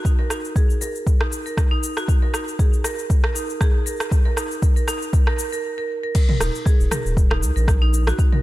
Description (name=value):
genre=afro house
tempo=118 BPM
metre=4/4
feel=swing 55% on 16ths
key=Eb minor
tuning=A4 = 441 Hz
part: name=marimba with hard mallets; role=arpeggios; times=0.0-8.4 s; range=Eb4 to Bb4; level=-27 LUFS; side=right 2 dB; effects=sidechain pumping, low-pass filter, digital delay
part: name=electronic kick drum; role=drums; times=0.0-8.3 s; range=none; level=-17 LUFS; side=equal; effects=overdrive
part: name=deep house drum kit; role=drums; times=0.1-8.4 s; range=cabasa, crash cymbal, rim click, toms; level=-27 LUFS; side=equal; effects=overdrive, high-pass filter on snare, high-pass filter on perc, high-pass filter on toms, high-pass filter on cymbals, high-pass filter on room
part: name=round analog bass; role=bass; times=6.4-8.1 s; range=Eb1 to Db2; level=-20 LUFS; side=equal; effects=tube saturation, sidechain pumping
room=little or no reverb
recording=none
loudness=-18 LUFS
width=side -17 dB against mid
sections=0.0-6.2 A section; 6.2-8.4 B section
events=build-up 0.0-6.2; break 5.6-6.2; drop 6.2-8.4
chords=0.0 Eb5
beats=| 0.05 0.56 1.07 1.57 | 2.08 2.59 3.10 3.61 | 4.12 4.62 5.13 5.64 | 6.15 6.66 7.17 7.68 | 8.19